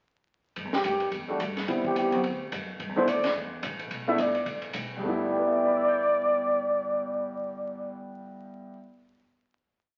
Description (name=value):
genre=jazz, small-group swing and bop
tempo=216 BPM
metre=4/4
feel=swing 58% on 8ths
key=G major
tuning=A4 = 441 Hz
part: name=upright bass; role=bass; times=0.6-8.7 s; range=G1 to A2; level=-44 LUFS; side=equal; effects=none
part: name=compact cocktail drum kit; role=drums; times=0.6-4.8 s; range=hi-hat, kick drum, ride cymbal, snare drum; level=-37 LUFS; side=equal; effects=none
part: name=breathy trumpet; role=melody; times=0.7-8.0 s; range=G4 to E5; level=-29 LUFS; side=equal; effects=none
part: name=warm grand piano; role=accompaniment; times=1.3-9.0 s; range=G2 to G6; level=-33 LUFS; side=equal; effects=none
room=wet large studio reverb, RT60 1.1 s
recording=very old 78 rpm record, vinyl crackle, nothing above 7.5 kHz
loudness=-28 LUFS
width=mono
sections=0.6-5.0 A section; 5.0-7.2 final chord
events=none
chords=0.6 G5; 1.1 Em11; 1.7 Am9; 2.2 D; 2.8 G69